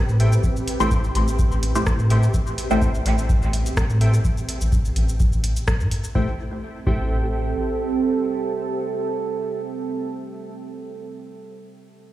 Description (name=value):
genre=dub techno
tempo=126 BPM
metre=4/4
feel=swing 53% on 16ths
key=A minor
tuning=A4 = 439 Hz
part: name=deep dark ambient pad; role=sustained chords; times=0.0-10.7 s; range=C4 to B4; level=-27 LUFS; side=right 4 dB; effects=chorus, built-in reverb, sidechain pumping
part: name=flickering grainy texture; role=texture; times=0.0-4.3 s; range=G4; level=-39 LUFS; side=equal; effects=built-in reverb, sidechain pumping
part: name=soft dub sub bass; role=bass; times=0.1-7.5 s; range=A1 to A2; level=-20 LUFS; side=equal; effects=tube saturation, sidechain pumping
part: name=booming analog drum machine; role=drums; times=0.1-6.1 s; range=hi-hat, rim click, shaker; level=-31 LUFS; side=equal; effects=dub echo
part: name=warbly lo-fi synth keys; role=riff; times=0.2-11.4 s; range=A4 to G5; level=-34 LUFS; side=equal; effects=chorus, sidechain pumping, dub echo
part: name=electronic kick drum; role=drums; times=0.4-7.0 s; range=none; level=-22 LUFS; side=equal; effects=none
part: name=filtered dub chord stab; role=stabs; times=0.8-2.9, 6.2-11.4 s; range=A3 to C5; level=-26 LUFS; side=left 1 dB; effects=phaser, sidechain pumping, dub echo
room=light reverb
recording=played on a big sound system in a bare room, large studio reverb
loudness=-19 LUFS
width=side -14 dB against mid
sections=0.0-6.2 A section; 6.2-10.0 B section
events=filter sweep on synth stab 0.0-4.2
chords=0.0 Am7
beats=| 0.44 0.91 1.39 1.87 | 2.34 2.82 3.29 3.77 | 4.25 4.72 5.20 5.68 | 6.15 6.63 7.11 7.58 | 8.06 8.53 9.01 9.49